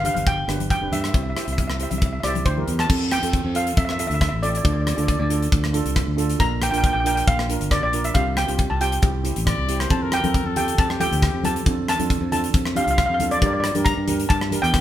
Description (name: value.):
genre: calypso.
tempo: 137 BPM.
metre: 4/4.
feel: straight.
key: F major.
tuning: A4 = 442 Hz.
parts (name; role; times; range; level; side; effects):
steel pan; melody; 0.0-14.8 s; C5 to Bb5; -24 LUFS; equal; none.
steel pan; accompaniment; 0.0-14.8 s; C4 to C5; -29 LUFS; right 6 dB; none.
modern bright fingered electric bass; bass; 0.0-14.8 s; F1 to G2; -24 LUFS; equal; none.
tight metal drum kit; drums; 0.0-14.8 s; crash cymbal, hi-hat, kick drum, rim click; -23 LUFS; equal; none.
congas; percussion; 0.0-2.8, 9.9-14.6 s; none; -32 LUFS; left 3 dB; none.
mellow trumpet; second line; 9.5-11.8 s; G4 to D5; -29 LUFS; left 4 dB; none.
room: moderate stone room reverb, RT60 1.1 s.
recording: band playing live in one room.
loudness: -19 LUFS.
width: side -12 dB against mid.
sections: 0.0-2.9 A section; 2.9-14.8 B section.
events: none.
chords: 0.0 G; 1.1 C; 2.9 F; 4.6 Dm; 6.4 Bb; 8.2 Csus4; 9.0 C; 9.9 Fadd9; 11.7 Dm/F; 13.4 Gm.